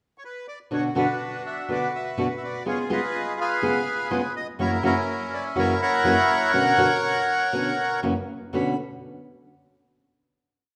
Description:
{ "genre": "tango", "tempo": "123 BPM", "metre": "4/4", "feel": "rubato", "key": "B harmonic minor", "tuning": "A4 = 440 Hz", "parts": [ { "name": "bandoneon", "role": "melody", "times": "0.2-8.8 s", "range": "C#4 to B5", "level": "-26 LUFS", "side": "equal", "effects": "none" }, { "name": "nylon-string guitar", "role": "accompaniment", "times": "0.7-8.7 s", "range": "F#2 to G#4", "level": "-28 LUFS", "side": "equal", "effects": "none" } ], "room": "moderate recital hall reverb, RT60 1.7 s", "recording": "none", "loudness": "-24 LUFS", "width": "mono", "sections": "0.0-0.7 pickup bar; 0.7-8.5 A section; 8.5-10.5 final chord", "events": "none", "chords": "0.0 N.C.; 0.7 Bm; 2.7 C#7; 4.6 F#7; 6.5 Bmadd9; 8.0 F#7; 8.5 Bmadd9", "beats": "0.23 | 0.72 1.21 1.70 2.18 | 2.66 3.15 3.63 4.12 | 4.60 5.08 5.57 6.05 | 6.55 7.04 7.54 8.04 | 8.54" }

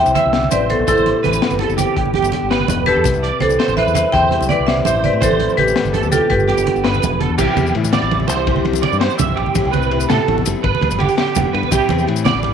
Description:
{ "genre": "highlife guitar band", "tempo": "111 BPM (dotted quarters)", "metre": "12/8", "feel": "straight", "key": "C major", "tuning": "A4 = 440 Hz", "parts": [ { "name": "marimba with hard mallets", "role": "melody", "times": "0.0-7.0 s", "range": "E4 to G5", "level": "-17 LUFS", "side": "equal", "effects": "none" }, { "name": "picked steel-string acoustic guitar", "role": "accompaniment", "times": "0.0-12.5 s", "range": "E2 to G4", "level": "-23 LUFS", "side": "left 11 dB", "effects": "none" }, { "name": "electric guitar at the edge of break-up", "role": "arpeggios", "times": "0.0-12.5 s", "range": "G4 to E5", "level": "-20 LUFS", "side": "right 9 dB", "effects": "ensemble chorus, tape echo" }, { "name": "fingered electric bass", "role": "bass", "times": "0.0-12.5 s", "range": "E1 to A2", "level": "-22 LUFS", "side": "left 1 dB", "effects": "none" }, { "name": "congas", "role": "percussion", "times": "0.1-12.5 s", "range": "none", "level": "-23 LUFS", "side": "right 8 dB", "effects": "none" }, { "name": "maracas", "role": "percussion", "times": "0.1-12.3 s", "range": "none", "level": "-29 LUFS", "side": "left 17 dB", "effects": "none" }, { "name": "crunchy breakbeat drum kit", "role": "drums", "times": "0.2-12.5 s", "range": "crash cymbal, hi-hat, kick drum, ride cymbal, snare drum", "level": "-23 LUFS", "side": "left 5 dB", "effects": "none" } ], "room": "wet spring reverb, RT60 1.2 s, studio ambience", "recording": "1960s-style stereo with parts hard left and right", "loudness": "-14 LUFS", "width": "side -7 dB against mid", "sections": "0.0-7.4 A section; 7.4-12.5 B section", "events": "none", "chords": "0.0 C; 0.9 Am7; 2.0 Gadd9; 3.0 C; 5.2 Am7; 6.3 Gadd9; 7.4 C; 9.6 Am7; 10.6 G; 11.7 C", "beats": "0.33 | 0.88 1.42 1.96 2.50 | 3.05 3.59 4.13 4.68 | 5.22 5.76 6.30 6.85 | 7.39 7.93 8.47 9.01 | 9.56 10.10 10.64 11.18 | 11.72 12.26" }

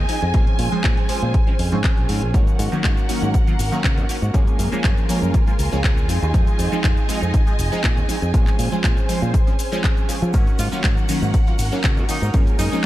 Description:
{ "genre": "filtered disco house", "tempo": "120 BPM", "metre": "4/4", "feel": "swing 53% on 16ths", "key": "Ab mixolydian", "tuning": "A4 = 440 Hz", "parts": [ { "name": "warm symphonic violin section", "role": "sustained chords", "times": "0.0-12.9 s", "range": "F4 to Ab5", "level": "-29 LUFS", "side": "equal", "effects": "sidechain pumping" }, { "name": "mellow electric guitar", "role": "riff", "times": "0.0-12.9 s", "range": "Eb3 to Ab4", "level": "-30 LUFS", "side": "right 4 dB", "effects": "vintage 12-bit sampler grit, sidechain pumping" }, { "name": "fingered electric bass", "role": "bass", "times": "0.0-12.8 s", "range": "F1 to F3", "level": "-23 LUFS", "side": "equal", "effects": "sidechain pumping" }, { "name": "funky polysynth comp", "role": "accompaniment", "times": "0.1-12.9 s", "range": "Eb3 to C5", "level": "-26 LUFS", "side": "equal", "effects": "chorus, phaser, sidechain pumping" }, { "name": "house drum kit", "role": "drums", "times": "0.1-12.9 s", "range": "handclaps, hi-hat, ride cymbal, shaker", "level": "-28 LUFS", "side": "left 1 dB", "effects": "sidechain pumping on hats, sidechain pumping on perc, sidechain pumping on cymbals" }, { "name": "electronic kick drum", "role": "drums", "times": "0.3-12.4 s", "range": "none", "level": "-18 LUFS", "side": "equal", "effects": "none" }, { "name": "egg shaker", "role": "percussion", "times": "10.3-12.8 s", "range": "none", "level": "-40 LUFS", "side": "right 7 dB", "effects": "none" }, { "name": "clear horn section", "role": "melody", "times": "10.6-12.9 s", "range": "Eb4 to F4", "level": "-28 LUFS", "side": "right 1 dB", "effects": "sidechain pumping" } ], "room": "digital ambience", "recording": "dark, warm production", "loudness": "-16 LUFS", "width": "side -15 dB against mid", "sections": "0.0-12.9 A section", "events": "none", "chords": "0.3 Bbm9; 2.3 Ab9sus4; 4.3 Gbmaj9; 6.1 Fm7; 8.3 Bbm9; 10.3 Ab9sus4; 12.3 Gbmaj9", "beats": "| 0.34 0.84 1.34 1.84 | 2.34 2.84 3.34 3.84 | 4.34 4.84 5.34 5.84 | 6.34 6.84 7.34 7.84 | 8.34 8.84 9.34 9.84 | 10.34 10.84 11.34 11.84 | 12.34 12.84" }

